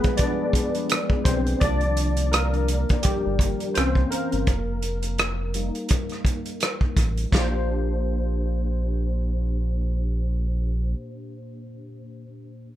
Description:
R&B, neo-soul; 84 BPM; 4/4; swing 56% on 16ths; Bb major; A4 = 440 Hz
barky tine electric piano; accompaniment; 0.0-12.7 s; Bb2 to D5; -27 LUFS; left 2 dB; overdrive, ensemble chorus
warm soul drum kit; drums; 0.0-7.5 s; hi-hat, kick drum, rim click, snare drum; -23 LUFS; equal
round analog bass; bass; 1.3-10.9 s; F1 to C2; -24 LUFS; equal
little or no reverb; -21 LUFS; side -12 dB against mid
0.0-7.3 A section; 7.3-10.2 B section
tine electric piano solo 0.0-7.3
0.0 G7b9 (rootless); 1.6 Cm11; 3.8 C7b9; 4.5 F7sus4; 7.3 Bb69
0.18 0.90 | 1.61 2.33 3.04 3.75 | 4.47 5.18 5.90 6.61 | 7.33 8.04 8.75 9.47

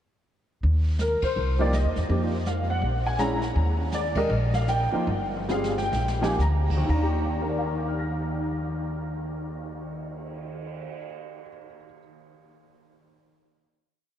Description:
jazz piano trio; 116-164 BPM; 4/4; swing 63% on 8ths; Eb major; A4 = 440 Hz
upright bass; bass; 0.6-10.9 s; G1 to F2; -26 LUFS; equal
jazz brush drum kit; drums; 0.6-10.9 s; brushed snare drum, crash cymbal, cymbal swell, hi-hat, kick drum, ride cymbal, snare drum; -37 LUFS; right 1 dB; vintage 12-bit sampler grit
warm grand piano; melody; 1.0-12.0 s; Eb2 to Bb6; -27 LUFS; equal; ensemble chorus, ping-pong delay
wet huge ambient reverb, RT60 8.0 s; dreamy mix soaked in reverb, cassette tape; -23 LUFS; side -10 dB against mid
0.6-6.9 A section; 6.9-11.0 final chord
band accent 1.2, 4.1; slowing down 3.6-6.9; drum fill 5.5-6.4
0.6 Eb5; 1.4 Cm; 2.1 F9sus4; 2.8 Bb7alt; 3.6 Ebmaj7
| 0.63 1.00 1.36 1.73 | 2.10 2.46 2.83 3.19 | 3.56 3.93 4.30 4.68 | 5.08 5.49 5.93 6.39 | 6.89 7.41 7.93 8.45 | 8.96 9.48 10.00 10.52

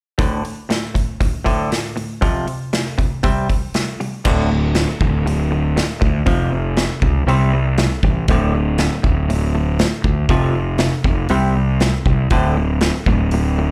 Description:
quiet-loud alternative rock; 119 BPM; 4/4; straight; D minor; A4 = 441 Hz
direct-recorded clean electric guitar; arpeggios; 0.2-13.7 s; D2 to C4; -24 LUFS; equal; subtle chorus, slapback echo
big rock drum kit; drums; 0.2-13.4 s; crash cymbal, hi-hat, kick drum, snare drum; -22 LUFS; equal
fuzz fingered electric bass; bass; 4.3-13.7 s; D1 to D2; -20 LUFS; equal; overdrive
small room ambience; live gig heard through the venue's PA, club reverb; -18 LUFS; mono
0.2-4.2 A section; 4.2-13.7 B section
0.2 D5; 2.2 F5; 3.2 C5; 4.2 D5; 6.3 F5; 7.3 C5; 8.3 D5; 10.3 F5; 11.3 C5; 12.3 D5
| 0.19 0.70 1.21 1.72 | 2.22 2.73 3.24 3.74 | 4.25 4.75 5.26 5.76 | 6.27 6.77 7.28 7.78 | 8.28 8.79 9.29 9.80 | 10.30 10.80 11.31 11.81 | 12.31 12.82 13.32

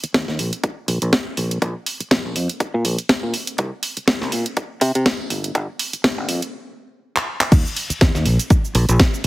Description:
filtered disco house; 122 BPM; 4/4; swing 56% on 16ths; A4 = 440 Hz
fingered electric bass; bass; 0.0-9.3 s; G1 to C3; -20 LUFS; equal; sidechain pumping, high-pass filter, low-pass filter
house drum kit; drums; 0.0-9.3 s; crash cymbal, handclaps, hi-hat, shaker, snare drum; -20 LUFS; equal; sidechain pumping on hats, sidechain pumping on perc, sidechain pumping on cymbals
electronic kick drum; drums; 0.1-9.1 s; -16 LUFS; equal; high-pass filter on kick, high-pass filter on room
light reverb; heavily compressed radio sound, multiband compression; -18 LUFS; side -18 dB against mid
0.0-7.5 A section; 7.5-9.3 B section
build-up 0.0-7.5; filter sweep on fingered electric bass 0.0-7.5; drum fill 7.2-7.5; drop 7.5-9.3
0.14 0.64 1.13 | 1.62 2.11 2.60 3.09 | 3.59 4.08 4.57 5.06 | 5.55 6.04 6.54 7.03 | 7.52 8.01 8.50 9.00

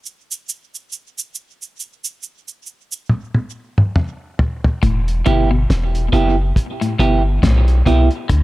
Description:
dub reggae; 69 BPM; 4/4; swing 58% on 16ths; E minor; A4 = 440 Hz
cabasa; percussion; 0.1-3.1 s; -26 LUFS; right 5 dB; tape echo
cloth-damped thuddy drum kit; drums; 3.1-8.4 s; hi-hat, kick drum, snare drum, toms; -17 LUFS; equal
clean electric guitar; arpeggios; 4.8-8.4 s; A2 to D3; -23 LUFS; left 4 dB; tape echo
soft dub sub bass; bass; 4.8-8.4 s; E1 to D2; -16 LUFS; equal
electric guitar at the edge of break-up; accompaniment; 5.3-8.1 s; B3 to G4; -19 LUFS; right 4 dB; harmonic tremolo, tape echo
small room ambience; -14 LUFS; side -18 dB against mid
0.0-4.8 A section; 4.8-8.4 B section
break 0.0-4.8; drum fill 3.1-4.8
0.0 N.C.; 4.8 Em
0.49 | 1.36 2.23 3.09 3.96 | 4.83 5.69 6.56 7.43 | 8.29

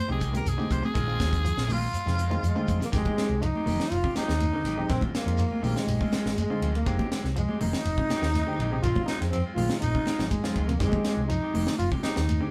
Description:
afrobeat; 122 BPM; 4/4; straight; F dorian; A4 = 441 Hz
raspy tenor saxophone; melody; 0.0-2.7 s; F4 to C5; -34 LUFS; equal
barky tine electric piano; accompaniment; 0.1-12.5 s; Ab3 to Bb4; -40 LUFS; equal; overdrive
electric guitar at the edge of break-up; arpeggios; 0.1-12.5 s; C3 to F3; -39 LUFS; equal
electric guitar at the edge of break-up; stabs; 0.1-12.5 s; Eb3 to G4; -41 LUFS; equal
hollow-body short-scale fingered electric bass; bass; 0.1-12.4 s; F1 to F2; -32 LUFS; equal
congas; percussion; 0.1-12.4 s; -36 LUFS; equal
shekere; percussion; 0.1-12.4 s; -37 LUFS; equal
tight funk drum kit; drums; 0.2-12.4 s; hi-hat, kick drum, ride cymbal, snare drum; -34 LUFS; equal
mellow trombone; melody; 2.5-12.5 s; Ab3 to F4; -33 LUFS; equal
growling tenor saxophone; second line; 2.5-12.5 s; Ab3 to F4; -39 LUFS; equal
wet studio reverb, RT60 0.5 s; band playing live in one room; -27 LUFS; mono
0.0-2.9 A section; 2.9-12.5 B section
tenor saxophone solo 0.0-2.9; drum fill 10.3-10.8
0.0 Fm9 (rootless); 1.0 Bb9sus4; 2.9 Fm9; 4.9 Bb9sus4; 6.9 Fm9; 8.8 Bb9sus4; 10.8 Fm9
0.46 | 0.96 1.45 1.94 2.44 | 2.93 3.42 3.92 4.41 | 4.90 5.39 5.89 6.38 | 6.87 7.36 7.86 8.35 | 8.84 9.33 9.83 10.32 | 10.81 11.30 11.80 12.29

